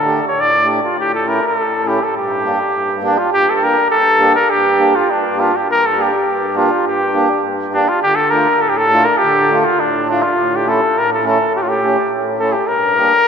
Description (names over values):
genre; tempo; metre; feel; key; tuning
klezmer; 102 BPM; 4/4; straight; G dorian sharp4; A4 = 443 Hz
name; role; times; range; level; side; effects
cornet with straight mute; melody; 0.0-13.3 s; D4 to D5; -14 LUFS; equal; none
mellow accordion; accompaniment; 0.0-13.1 s; G2 to G4; -18 LUFS; right 1 dB; none
room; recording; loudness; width
wet cathedral reverb, RT60 5.1 s; recorded in a church or concert hall; -12 LUFS; side -7 dB against mid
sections
0.0-3.3 A section; 3.3-13.3 A section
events
none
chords
0.0 D5; 1.0 A; 2.1 Gm; 8.0 Dm; 10.4 A; 12.7 Gm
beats
0.36 | 0.95 1.54 2.14 2.73 | 3.32 3.91 4.50 5.09 | 5.68 6.27 6.85 7.44 | 8.03 8.61 9.20 9.78 | 10.36 10.95 11.53 12.11 | 12.69 13.26